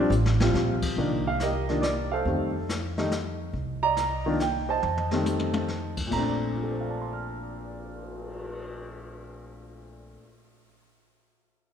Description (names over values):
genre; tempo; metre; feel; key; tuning
jazz piano trio; 140 BPM; 3/4; swing 67% on 8ths; Bb major; A4 = 440 Hz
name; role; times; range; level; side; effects
warm baby grand piano; melody; 0.0-10.4 s; Bb2 to F6; -28 LUFS; equal; none
upright bass; bass; 0.0-10.2 s; A1 to F2; -30 LUFS; equal; none
jazz brush drum kit; drums; 0.1-8.6 s; brushed snare drum, crash cymbal, cymbal swell, hi-hat, kick drum, snare drum, toms; -35 LUFS; left 2 dB; none
room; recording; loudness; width
moderate concert hall reverb, RT60 2.0 s; recorded in a church or concert hall; -25 LUFS; side -8 dB against mid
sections
1.0-6.1 A section; 6.1-8.7 B section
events
drum fill 0.1-0.5, 4.8-5.7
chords
0.0 Bb5; 1.0 Cm11; 2.3 F7; 3.5 Cm9; 4.8 F7; 6.1 Bbmaj9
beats
0.11 0.54 | 0.97 1.40 1.83 | 2.26 2.69 3.11 | 3.54 3.97 4.40 | 4.83 5.26 5.69 | 6.12 6.55 6.98 | 7.41 7.84 8.27